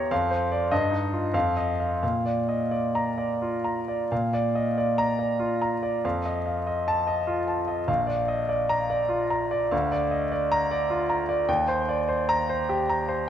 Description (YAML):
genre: classical, romantic character piece for solo piano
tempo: 84-105 BPM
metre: 3/4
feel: rubato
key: Bb major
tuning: A4 = 439 Hz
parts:
  - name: clear concert grand piano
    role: solo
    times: 0.0-13.3 s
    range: Bb1 to Bb5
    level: -23 LUFS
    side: equal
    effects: none
room: moderate recital hall reverb, RT60 1.8 s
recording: none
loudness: -23 LUFS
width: side -10 dB against mid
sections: 0.0-4.1 A section; 4.1-13.3 A section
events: none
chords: 0.1 F5; 0.7 Eb/G; 1.3 Ebsus2/F; 2.0 Bb; 6.0 F7; 7.9 Bb; 9.7 Bb/D; 11.5 Cm7/Eb